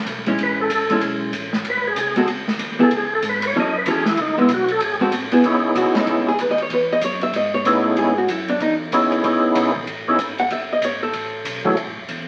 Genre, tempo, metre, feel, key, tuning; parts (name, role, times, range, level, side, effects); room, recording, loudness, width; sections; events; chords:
soul jazz organ trio; 190 BPM; 4/4; swing 62% on 8ths; C# minor; A4 = 440 Hz
mellow tonewheel organ; bass; 0.0-12.3 s; E1 to A2; -38 LUFS; equal; chorus vibrato, slow rotary speaker
swinging big-band drum kit; drums; 0.1-12.2 s; hi-hat, kick drum, ride cymbal, snare drum; -29 LUFS; equal
archtop guitar, miked and amplified; accompaniment; 0.3-11.7 s; F#3 to F#5; -22 LUFS; equal
percussive tonewheel organ; melody; 0.4-11.8 s; F#3 to D#5; -21 LUFS; equal; slow rotary speaker, overdrive, chorus vibrato
wet studio reverb, RT60 0.8 s; very old 78 rpm record, vinyl crackle; -20 LUFS; mono
0.0-5.4 A section; 5.4-12.3 A section
tonewheel organ solo 0.0-5.4; hollow-body jazz guitar solo 5.4-12.3
0.4 Amaj7; 1.7 G#; 2.9 C#5; 3.5 F#m7; 4.2 C#m7; 4.8 G#7b9; 5.4 C#m7; 10.5 F#m7